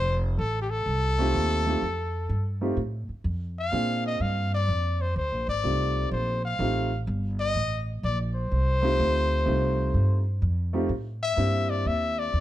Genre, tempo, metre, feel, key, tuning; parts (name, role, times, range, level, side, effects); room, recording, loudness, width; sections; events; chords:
jazz, small-group swing and bop; 126 BPM; 4/4; swing 67% on 8ths; F mixolydian; A4 = 440 Hz
bright trumpet; melody; 0.0-12.4 s; G4 to F5; -28 LUFS; left 2 dB; plate reverb
upright bass; bass; 0.0-12.4 s; F1 to Bb2; -26 LUFS; equal
warm grand piano; accompaniment; 1.2-12.4 s; A3 to Ab4; -30 LUFS; right 1 dB
light reverb; dark, warm production; -24 LUFS; side -13 dB against mid
0.0-12.4 A section
0.0 F7; 3.7 Bb7; 5.6 F7; 11.4 C7